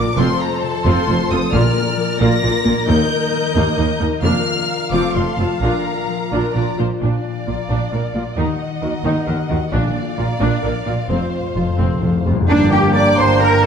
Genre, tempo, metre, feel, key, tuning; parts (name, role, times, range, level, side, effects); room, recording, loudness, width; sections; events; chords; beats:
cinematic, heroic adventure film score; 88 BPM (dotted quarters); 6/8; straight; Bb major; A4 = 442 Hz
warm symphonic violin section; melody; 0.0-13.7 s; D5 to Bb6; -26 LUFS; left 2 dB
rich studio violin section; second line; 0.0-13.7 s; A4 to D6; -24 LUFS; left 2 dB
rich symphonic viola section; accompaniment; 0.0-13.7 s; Bb3 to Bb4; -24 LUFS; equal
concert harp; arpeggios; 0.0-13.7 s; F2 to Gb5; -25 LUFS; left 7 dB
clear symphonic double bass section; bass; 0.0-13.7 s; F1 to Eb2; -22 LUFS; right 3 dB
rich studio cello section; bass; 0.0-13.7 s; Eb2 to D5; -21 LUFS; right 2 dB
timpani; percussion; 1.5-2.2, 9.7-12.5 s; F2 to Bb2; -22 LUFS; left 2 dB
large flute ensemble; second line; 12.5-13.7 s; Bb5; -24 LUFS; right 3 dB
mellow clarinet; second line; 12.5-13.7 s; D4; -24 LUFS; left 1 dB
warm oboe; second line; 12.5-13.7 s; G5; -27 LUFS; left 3 dB
dark French horn section; sustained chords; 12.5-13.7 s; Bb3; -23 LUFS; left 4 dB
warm trombone section; sustained chords; 12.5-13.7 s; G3 to Bb3; -25 LUFS; right 1 dB
warm trumpet section; stabs; 12.5-13.7 s; D4 to D5; -22 LUFS; right 3 dB
moderate scoring stage reverb, RT60 1.5 s; dark, warm production; -15 LUFS; side -7 dB against mid
0.0-7.0 A section; 7.0-12.5 B section; 12.5-13.7 C section
timpani fill 11.1-12.5
0.2 F; 1.5 Bb; 2.9 Eb; 4.2 Bb/F; 4.9 F; 5.6 Bb; 8.4 Ebm; 9.7 Bb; 11.1 F; 12.5 Gm
| 0.17 0.85 | 1.52 2.21 | 2.89 3.56 | 4.24 4.92 | 5.62 6.32 | 7.01 7.70 | 8.38 9.05 | 9.73 10.41 | 11.10 11.80 | 12.49 13.18